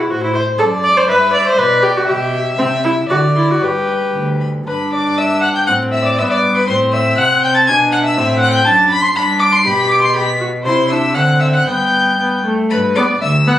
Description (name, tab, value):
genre	quick classical-period movement for string quartet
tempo	120 BPM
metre	2/4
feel	rubato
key	G major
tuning	A4 = 440 Hz
part	dark violin	second line	0.0-13.6 s	B4 to D6	-17 LUFS	left 1 dB	none
part	warm viola	accompaniment	0.0-13.6 s	A3 to D5	-16 LUFS	equal	none
part	dark cello	bass	0.1-13.6 s	D2 to D3	-20 LUFS	right 1 dB	none
part	rich violin	melody	0.3-13.6 s	D5 to D7	-17 LUFS	left 2 dB	none
room	moderate large studio reverb, RT60 1.3 s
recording	recorded on a phone in the room, studio reverb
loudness	-12 LUFS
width	side -12 dB against mid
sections	0.0-4.7 A section; 4.7-12.7 A section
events	none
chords	0.1 Am; 0.6 D/F#; 1.1 G; 1.6 G/B; 2.6 C; 3.1 D; 3.6 G; 4.7 G5; 5.7 Am; 6.2 G; 6.7 Am; 7.7 Bm6; 8.2 Am; 8.7 D/F#; 9.2 G; 9.7 G/B; 10.7 C; 11.2 D7; 11.7 G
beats	0.10 | 0.59 1.08 | 1.58 2.08 | 2.58 3.10 | 3.62 4.15 | 4.67 5.18 | 5.68 6.19 | 6.69 7.19 | 7.68 8.18 | 8.67 9.17 | 9.66 10.15 | 10.65 11.15 | 11.67 12.19 | 12.71 13.22